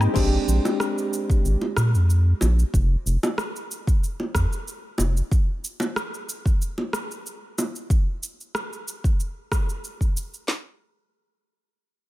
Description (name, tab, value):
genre	sunset chillout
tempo	93 BPM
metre	4/4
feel	swing 53% on 16ths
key	unclear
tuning	A4 = 440 Hz
part	hollow-body jazz guitar	accompaniment	0.0-2.7 s	Ab3 to G4	-27 LUFS	equal	auto-pan, tape echo
part	Celtic harp	arpeggios	0.0-2.4 s	Eb4 to C5	-35 LUFS	left 3 dB	tape echo
part	round analog bass	bass	0.0-5.2 s	F1 to Bb2	-19 LUFS	equal	none
part	smooth R&B drum kit	drums	0.0-10.5 s	crash cymbal, rim click, shaker, woodblock	-30 LUFS	right 1 dB	small room ambience
part	deep house drum kit	drums	0.2-10.6 s	handclaps, kick drum, snare drum	-21 LUFS	equal	small room ambience
part	bongos	percussion	0.7-7.7 s	none	-29 LUFS	right 1 dB	none
room	digital ambience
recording	none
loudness	-21 LUFS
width	side -16 dB against mid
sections	0.2-10.5 A section; 10.5-12.1 B section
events	break 0.0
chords	0.2 Bb13; 2.7 N.C.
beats	| 0.15 0.80 1.44 2.09 | 2.73 3.38 4.02 4.67 | 5.31 5.96 6.60 7.25 | 7.89 8.54 9.19 9.83 | 10.47